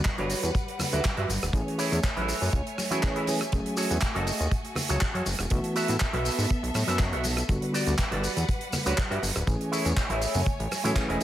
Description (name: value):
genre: nu-disco, nu disco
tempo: 121 BPM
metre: 4/4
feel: swing 53% on 16ths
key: unclear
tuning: A4 = 439 Hz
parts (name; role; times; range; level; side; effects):
- clear symphonic string section; sustained chords; 0.0-11.2 s; G3 to G#5; -34 LUFS; equal; sidechain pumping
- damped 70s drum kit; drums; 0.0-11.2 s; handclaps, hi-hat, rim click, shaker; -31 LUFS; right 1 dB; none
- kick drum; drums; 0.1-11.1 s; none; -27 LUFS; equal; none
- electric guitar with an envelope filter; riff; 0.2-11.2 s; E4 to E5; -33 LUFS; right 2 dB; wide subtle chorus, tape echo
- fat analog bass; bass; 0.2-11.2 s; D1 to A2; -29 LUFS; equal; none
- congas; percussion; 0.2-11.2 s; none; -37 LUFS; left 1 dB; none
- mellow tine electric piano; accompaniment; 1.5-11.2 s; D3 to G#4; -32 LUFS; equal; sidechain pumping, tape echo
room: light reverb, small room ambience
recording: none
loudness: -24 LUFS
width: side -12 dB against mid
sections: 0.0-11.2 A section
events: none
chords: 0.0 Gmaj7; 1.5 Amaj7; 3.5 F#madd9; 5.5 B7sus4; 7.5 Gmaj7; 9.5 Amaj7